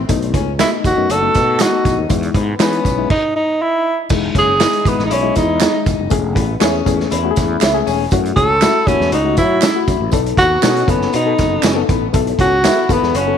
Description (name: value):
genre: uptempo 1960s-style soul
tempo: 120 BPM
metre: 4/4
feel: straight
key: E major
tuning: A4 = 441 Hz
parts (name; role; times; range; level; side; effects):
- sustaining fretless electric bass; bass; 0.0-13.3 s; E1 to F#3; -21 LUFS; right 1 dB; tube saturation
- reed electric piano; accompaniment; 0.1-13.4 s; G#3 to G#5; -20 LUFS; left 13 dB; none
- vintage drum kit; drums; 0.1-13.3 s; crash cymbal, hi-hat, kick drum, snare drum; -18 LUFS; right 1 dB; none
- tambourine and handclaps; percussion; 0.1-13.3 s; none; -28 LUFS; right 12 dB; none
- electric guitar through a small old amp; riff; 0.3-13.4 s; B3 to F#4; -24 LUFS; left 12 dB; none
- breathy tenor saxophone; melody; 0.6-13.4 s; B3 to A4; -16 LUFS; right 1 dB; none
- mellow electric guitar; stabs; 0.6-12.8 s; B3 to E5; -25 LUFS; right 14 dB; lush chorus
room: light reverb, small room ambience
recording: 1960s-style stereo with parts hard left and right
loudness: -13 LUFS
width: side -8 dB against mid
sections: 0.0-4.1 A section; 4.1-13.4 B section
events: reed electric piano fill 7.4-8.1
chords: 0.1 B7; 2.1 Emaj7; 6.1 Amaj7/E; 8.1 F#m7; 10.1 B7; 12.1 B7sus4